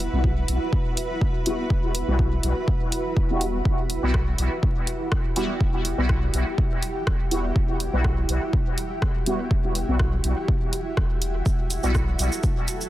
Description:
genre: dub techno.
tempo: 123 BPM.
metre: 4/4.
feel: swing 53% on 16ths.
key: E minor.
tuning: A4 = 439 Hz.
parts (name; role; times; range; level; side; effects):
granular cloud pad; sustained chords; 0.0-12.9 s; E4 to B4; -31 LUFS; right 1 dB; built-in reverb, sidechain pumping.
warm sub bass; bass; 0.0-12.3 s; E1 to B1; -26 LUFS; equal; sidechain pumping.
punchy analog drum machine; drums; 0.0-12.9 s; cabasa, hi-hat, rim click; -31 LUFS; equal; overdrive, soft clipping on snare.
resonant sweep polysynth; stabs; 0.1-11.9 s; G3 to F#4; -29 LUFS; equal; chorus, phaser, sidechain pumping, dub echo.
electronic kick drum; drums; 0.2-12.5 s; none; -24 LUFS; equal; none.
room: digital ambience.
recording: dense, heavily limited modern master, vinyl crackle.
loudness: -21 LUFS.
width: side -14 dB against mid.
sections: 0.0-3.7 A section; 3.7-12.9 A section.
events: none.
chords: 0.0 Esus2; 3.7 Emadd9.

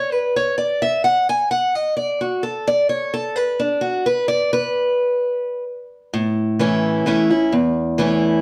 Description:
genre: bluegrass.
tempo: 130 BPM.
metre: 3/4.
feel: straight.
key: unclear.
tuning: A4 = 437 Hz.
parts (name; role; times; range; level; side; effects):
picked steel-string acoustic guitar; solo; 0.0-8.4 s; E2 to G#5; -20 LUFS; equal; none.
room: wet studio reverb, RT60 0.6 s.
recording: heard from further back in the room.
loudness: -20 LUFS.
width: mono.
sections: 0.0-6.1 A section; 6.1-8.4 B section.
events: steel-string acoustic guitar solo 0.0-6.1.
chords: 0.0 N.C.; 6.1 A.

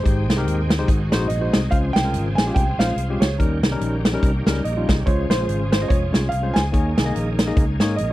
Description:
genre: uptempo gospel.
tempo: 144 BPM.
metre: 4/4.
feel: swing 57% on 8ths.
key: unclear.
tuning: A4 = 437 Hz.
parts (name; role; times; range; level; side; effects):
clear concert grand piano; melody; 0.0-8.1 s; C5 to Ab5; -27 LUFS; right 2 dB; none.
barky tine electric piano; accompaniment; 0.0-8.1 s; Ab2 to Eb5; -26 LUFS; left 2 dB; medium stereo tremolo.
bright tonewheel organ; sustained chords; 0.0-8.1 s; Eb3 to Ab4; -33 LUFS; right 2 dB; slow rotary speaker, chorus vibrato.
rich studio string section; sustained chords; 0.0-8.1 s; Db3 to G5; -35 LUFS; left 2 dB; none.
fingered electric bass; bass; 0.0-8.1 s; F1 to Ab2; -23 LUFS; equal; none.
natural country drum kit; drums; 0.1-8.1 s; hi-hat, kick drum, snare drum; -20 LUFS; equal; none.
room: studio reverb.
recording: dry, close 1970s-style studio recording.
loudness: -18 LUFS.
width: side -16 dB against mid.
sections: 0.0-8.1 A section.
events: none.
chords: 0.1 Abmaj7; 0.9 Ab7; 1.7 Dbmaj7; 3.4 Eb7; 5.1 Dbmaj7; 6.7 Eb7sus4.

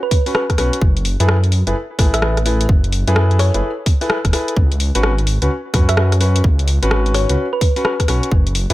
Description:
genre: UK garage, two-step garage.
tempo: 128 BPM.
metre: 4/4.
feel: swing 64% on 16ths.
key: unclear.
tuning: A4 = 440 Hz.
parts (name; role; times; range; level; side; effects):
thumb-piano-like synth pluck; melody; 0.0-8.4 s; B4 to E5; -24 LUFS; right 1 dB; chorus, tape echo.
electronic kick drum; drums; 0.1-8.4 s; none; -15 LUFS; equal; none.
garage drum kit; drums; 0.1-8.7 s; hi-hat, rim click; -21 LUFS; left 1 dB; none.
warm concert grand piano; stabs; 0.3-8.7 s; C#4 to B4; -22 LUFS; left 1 dB; tape echo.
dark detuned saw bass; bass; 0.6-8.7 s; E1 to F#2; -16 LUFS; equal; none.
room: little or no reverb.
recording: none.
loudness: -14 LUFS.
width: side -16 dB against mid.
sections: 0.0-8.7 A section.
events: none.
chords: 0.0 C#7sus4; 0.8 F#m11; 4.6 C#7sus4.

